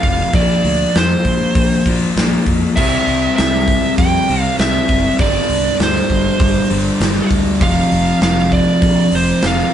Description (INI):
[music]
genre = hard rock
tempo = 99 BPM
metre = 4/4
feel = straight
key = G dorian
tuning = A4 = 440 Hz
[part]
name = smooth overdriven lead guitar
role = melody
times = 0.0-9.7 s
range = C5 to G5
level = -19 LUFS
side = right 3 dB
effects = none
[part]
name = crunchy overdriven guitar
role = riff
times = 0.0-9.7 s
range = F2 to C4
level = -17 LUFS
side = left 4 dB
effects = spring reverb
[part]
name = fuzz fingered electric bass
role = bass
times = 0.0-9.6 s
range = F1 to F2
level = -20 LUFS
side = equal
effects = overdrive
[part]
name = big rock drum kit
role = drums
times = 0.0-9.7 s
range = crash cymbal, hi-hat, kick drum, snare drum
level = -18 LUFS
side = right 1 dB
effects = none
[part]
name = high-gain distorted guitar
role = riff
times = 2.8-9.7 s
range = F2 to C4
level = -21 LUFS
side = right 6 dB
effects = distortion
[sound]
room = moderate studio reverb, RT60 0.9 s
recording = band playing live in one room, nothing above 10.6 kHz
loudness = -12 LUFS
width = side -10 dB against mid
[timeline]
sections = 0.0-9.7 A section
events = none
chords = 0.3 Bb; 2.8 C; 5.2 G5; 7.6 F5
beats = | 0.34 0.95 1.55 2.16 | 2.77 3.37 3.98 4.59 | 5.19 5.80 6.40 7.01 | 7.62 8.22 8.83 9.43